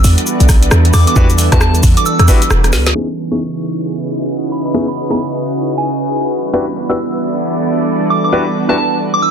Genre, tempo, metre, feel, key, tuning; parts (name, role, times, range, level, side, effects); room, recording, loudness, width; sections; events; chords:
UK garage, two-step garage; 134 BPM; 4/4; swing 61% on 16ths; C# minor; A4 = 440 Hz
soft string machine; sustained chords; 0.0-9.3 s; C#3 to B4; -20 LUFS; equal; ensemble chorus, sidechain pumping
short 808-style bass; bass; 0.0-2.9 s; E1 to E2; -11 LUFS; equal; tube saturation
garage drum kit; drums; 0.0-2.9 s; cabasa, hi-hat, rim click, snare drum; -17 LUFS; left 1 dB; soft clipping on snare
warbly tape-like pad; texture; 0.0-9.3 s; E3 to D#5; -19 LUFS; right 2 dB; chorus, built-in reverb, sidechain pumping
electronic kick drum; drums; 0.5-2.4 s; -11 LUFS; equal
soft synth bell; melody; 0.9-9.3 s; G#5 to E6; -19 LUFS; right 1 dB; chorus, phaser, digital delay
warm grand piano; stabs; 1.2-8.7 s; B3 to B4; -18 LUFS; left 2 dB; low-pass filter, digital delay
moderate small room reverb, RT60 0.5 s; dense, heavily limited modern master, low-pass filter; -11 LUFS; side -8 dB against mid
0.0-3.0 A section; 3.0-9.3 B section
drum fill 2.7; band accent 2.8; filter sweep on string machine 3.0-9.3; filter sweep 3.0-9.3
0.0 Em9; 3.0 C#m9; 6.3 Em9